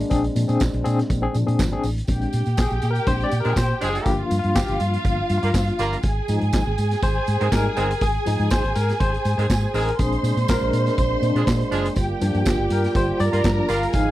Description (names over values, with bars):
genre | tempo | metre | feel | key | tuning
disco | 122 BPM | 4/4 | straight | unclear | A4 = 440 Hz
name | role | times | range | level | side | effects
mellow French horn section | sustained chords | 0.0-2.1, 10.0-14.1 s | F3 to F4 | -27 LUFS | equal | none
vintage drum kit | drums | 0.0-14.1 s | handclaps, hi-hat, kick drum, snare drum | -25 LUFS | equal | none
barky tine electric piano | accompaniment | 0.1-14.1 s | Bb2 to F5 | -26 LUFS | left 3 dB | medium tremolo
hollow-body short-scale fingered electric bass | bass | 0.1-14.1 s | Gb1 to Bb2 | -23 LUFS | equal | none
tambourine | percussion | 0.1-14.1 s | none | -41 LUFS | right 11 dB | none
dark studio string section | second line | 2.1-14.1 s | F4 to C6 | -27 LUFS | right 2 dB | none
clear horn section | stabs | 3.4-13.8 s | Eb3 to Bb4 | -25 LUFS | right 3 dB | none
room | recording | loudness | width
little or no reverb | dry, close 1970s-style studio recording | -19 LUFS | side -15 dB against mid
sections
0.0-2.1 A section; 2.1-14.1 B section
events
tine electric piano solo 2.1-14.1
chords
0.0 Bb9; 4.1 Gm7; 6.0 Fm7; 10.0 Bb9; 12.0 Gm7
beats
| 0.11 0.61 1.10 1.59 | 2.09 2.58 3.07 3.57 | 4.06 4.56 5.05 5.54 | 6.04 6.53 7.03 7.52 | 8.01 8.51 9.00 9.49 | 9.99 10.48 10.98 11.47 | 11.96 12.46 12.95 13.45 | 13.94